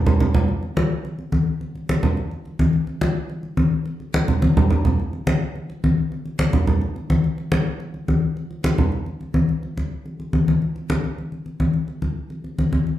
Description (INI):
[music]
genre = jazz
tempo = 213 BPM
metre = 4/4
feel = straight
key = none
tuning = none
[part]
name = congas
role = percussion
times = 0.1-13.0 s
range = none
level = -19 LUFS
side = equal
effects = none
[sound]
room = wet large studio reverb, RT60 0.9 s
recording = band playing live in one room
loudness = -19 LUFS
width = side -13 dB against mid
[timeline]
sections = 0.5-9.5 A section; 9.5-13.0 B section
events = drum fill 0.0-0.5, 4.4-5.0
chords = none